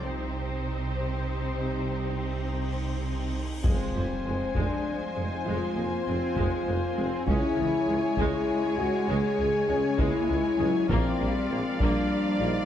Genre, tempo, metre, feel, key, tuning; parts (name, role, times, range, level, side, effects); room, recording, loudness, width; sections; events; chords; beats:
cinematic, epic orchestral film score; 66 BPM (dotted quarters); 12/8; straight; C minor; A4 = 441 Hz
dark symphonic violin section; melody; 0.0-12.7 s; C5 to Ab5; -39 LUFS; left 4 dB
warm symphonic violin section; second line; 0.0-12.7 s; G4 to D5; -38 LUFS; left 3 dB
clear symphonic viola section; accompaniment; 0.0-12.5 s; F3 to Eb4; -38 LUFS; equal
dark French horn section; sustained chords; 0.0-12.7 s; G3 to Ab4; -30 LUFS; left 4 dB
rich symphonic cello section; bass; 0.0-12.7 s; C3 to Db4; -34 LUFS; right 2 dB
rich symphonic double bass section; bass; 0.0-12.5 s; Bb1 to F2; -33 LUFS; right 2 dB
cymbal swell and impact; sound effects; 2.3-7.3 s; -39 LUFS; equal
pipe organ, principal; sustained chords; 3.6-12.7 s; Db4 to Ab5; -36 LUFS; left 1 dB
warm trombone section; sustained chords; 3.6-12.7 s; Db3 to C4; -36 LUFS; right 2 dB
clear tuba; bass; 3.6-12.5 s; F1 to Db2; -35 LUFS; right 3 dB
taiko ensemble; drums; 3.6-12.4 s; -30 LUFS; equal
moderate scoring stage reverb, RT60 2.1 s; dark, warm production; -25 LUFS; side -10 dB against mid
0.0-3.6 A section; 3.6-12.7 B section
cymbal swell 2.3-3.6; impact 3.6-7.3
0.0 Cm; 3.6 Fm; 7.3 Dbm; 10.9 Bb
| 0.02 0.93 1.83 2.74 | 3.65 4.55 5.46 6.37 | 7.27 8.18 9.08 9.99 | 10.90 11.80